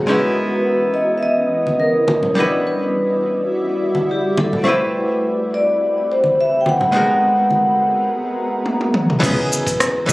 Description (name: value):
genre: sunset chillout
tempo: 105 BPM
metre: 4/4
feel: swing 53% on 16ths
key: unclear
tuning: A4 = 441 Hz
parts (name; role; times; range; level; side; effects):
- vibraphone with soft mallets; melody; 0.0-10.1 s; G4 to G5; -18 LUFS; equal; tape echo
- archtop guitar, miked and amplified; accompaniment; 0.0-10.1 s; E3 to B4; -20 LUFS; equal; auto-pan, tape echo
- shimmering ambient pad; sustained chords; 0.0-9.2 s; E3 to D#5; -23 LUFS; equal; chorus, built-in reverb
- congas; percussion; 1.7-7.6 s; none; -24 LUFS; equal; none
- deep house drum kit; drums; 8.7-10.1 s; crash cymbal, hi-hat, rim click, shaker, toms; -19 LUFS; equal; none
- fingered electric bass; bass; 9.2-10.1 s; C#2; -20 LUFS; equal; none
- electronic kick drum; drums; 9.2-10.1 s; none; -26 LUFS; equal; none
room: wet lush hall reverb, RT60 2.0 s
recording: recorded on a phone in the room, club reverb, compression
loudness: -15 LUFS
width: side -20 dB against mid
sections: 0.0-9.2 A section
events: break 8.1-9.2; drum fill 8.7-9.2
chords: 0.1 C#m9; 2.4 Em9; 4.7 Am9; 6.9 G#m9; 9.2 C#m9